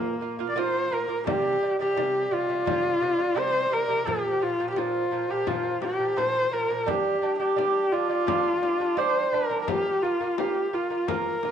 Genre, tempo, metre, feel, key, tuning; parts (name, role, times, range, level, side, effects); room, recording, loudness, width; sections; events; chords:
mongolian traditional, Mongolian folk; 86 BPM; 4/4; straight; Bb gong mode; A4 = 441 Hz
rich horsehead fiddle; melody; 0.0-11.5 s; Bb3 to D5; -24 LUFS; left 2 dB
lute; arpeggios; 0.0-11.5 s; Bb2 to F4; -30 LUFS; right 12 dB
warm cello; drone; 0.0-1.3 s; Bb2; -47 LUFS; equal
frame drum; percussion; 0.4-11.5 s; -35 LUFS; left 11 dB
wet spring reverb, RT60 1.6 s, small room ambience; 1960s-style stereo with parts hard left and right, nothing above 10.5 kHz; -23 LUFS; side -8 dB against mid
0.0-1.3 A section; 1.3-11.5 B section
0.0 Bb5; 1.3 C5; 4.1 Bb5; 6.9 G5; 9.7 Bb5